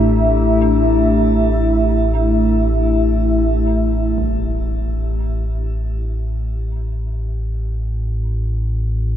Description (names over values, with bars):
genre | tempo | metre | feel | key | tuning
dark ambient drone | free time | none | none | unclear | A4 = 438 Hz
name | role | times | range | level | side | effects
dark analog pad | sustained chords | 0.0-4.2 s | A3 to E5 | -18 LUFS | equal | chorus, shimmer reverb
dark detuned synth bell | arpeggios | 0.0-9.2 s | D4 | -26 LUFS | left 3 dB | chorus, phaser, ping-pong delay, shimmer reverb
deep rumbling drone | drone | 0.0-9.2 s | A1 to A2 | -18 LUFS | equal | built-in reverb, wide subtle chorus
bronze singing bowl | texture | 0.0-4.2 s | G4 | -31 LUFS | equal | shimmer reverb
impact | percussion | 4.2-4.4 s | none | -33 LUFS | equal | none
room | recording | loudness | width
moderate huge ambient reverb, RT60 8.2 s | in a vast, echoing space | -16 LUFS | side -10 dB against mid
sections
0.0-4.2 A section; 4.2-9.2 B section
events
none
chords
0.0 A5; 4.2 Asus4